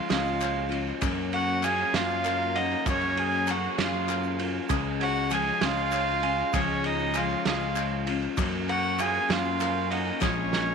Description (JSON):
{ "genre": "indie folk with a building arrangement", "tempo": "65 BPM (dotted quarters)", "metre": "6/8", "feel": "straight", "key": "Db major", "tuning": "A4 = 438 Hz", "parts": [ { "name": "warm fiddle", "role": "melody", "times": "0.0-10.7 s", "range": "Db5 to Ab5", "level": "-29 LUFS", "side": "left 2 dB", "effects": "none" }, { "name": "warm trumpet", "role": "second line", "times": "0.0-10.7 s", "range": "Db4 to Ab4", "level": "-33 LUFS", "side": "right 12 dB", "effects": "none" }, { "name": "picked steel-string acoustic guitar", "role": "accompaniment", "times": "0.0-10.7 s", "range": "Bb2 to F4", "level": "-32 LUFS", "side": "left 12 dB", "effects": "none" }, { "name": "dark studio string section", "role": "sustained chords", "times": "0.0-10.7 s", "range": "Db3 to Bb4", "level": "-41 LUFS", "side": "equal", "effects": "none" }, { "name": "tenor ukulele", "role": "arpeggios", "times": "0.0-10.7 s", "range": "Ab4 to Bb5", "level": "-37 LUFS", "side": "right 13 dB", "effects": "none" }, { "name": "picked electric bass", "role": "bass", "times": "0.1-10.7 s", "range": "Bb1 to Gb2", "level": "-33 LUFS", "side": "equal", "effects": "none" }, { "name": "loose indie drum kit", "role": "drums", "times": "0.1-10.7 s", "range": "kick drum, ride cymbal, snare drum", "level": "-31 LUFS", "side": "right 5 dB", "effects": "none" }, { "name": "egg shaker", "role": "percussion", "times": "0.3-10.6 s", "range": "none", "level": "-50 LUFS", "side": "right 20 dB", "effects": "none" }, { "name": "group handclap", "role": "percussion", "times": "0.4-10.4 s", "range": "none", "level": "-39 LUFS", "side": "left 15 dB", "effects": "none" } ], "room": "light reverb, studio ambience", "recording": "1960s-style stereo with parts hard left and right", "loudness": "-24 LUFS", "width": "side -6 dB against mid", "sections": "0.0-10.7 A section", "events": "drum fill 10.2-10.7", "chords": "0.0 Db; 1.0 Gbmaj7; 4.7 Db; 8.4 Gbmaj7; 10.2 Bbm7" }